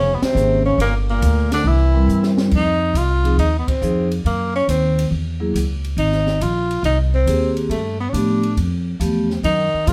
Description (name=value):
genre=jazz, small-group swing and bop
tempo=139 BPM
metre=4/4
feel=swing 68% on 8ths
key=unclear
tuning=A4 = 440 Hz
part: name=warm tenor saxophone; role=melody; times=0.0-9.9 s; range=A3 to F4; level=-23 LUFS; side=equal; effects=none
part: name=bright trombone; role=second line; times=0.0-2.4, 9.4-9.9 s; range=Bb2 to F3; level=-30 LUFS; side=equal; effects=none
part: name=upright bass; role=bass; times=0.0-9.9 s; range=F1 to A2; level=-21 LUFS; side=equal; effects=none
part: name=open jazz drum kit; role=drums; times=0.2-9.9 s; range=crash cymbal, hi-hat, kick drum, ride cymbal, snare drum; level=-31 LUFS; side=equal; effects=none
part: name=vibraphone with medium mallets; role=accompaniment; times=0.4-9.9 s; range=F3 to C5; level=-23 LUFS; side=equal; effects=none
room=moderate studio reverb, RT60 0.7 s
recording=heard from further back in the room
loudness=-18 LUFS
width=mono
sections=0.0-2.5 A section; 2.5-9.9 B section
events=band accent 0.1, 3.6; drum fill 2.1-2.5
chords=0.0 Bbm9; 0.8 Gm; 1.7 C7; 2.5 Fm7; 4.2 Gb7(no3); 6.0 Abmaj9; 7.7 G9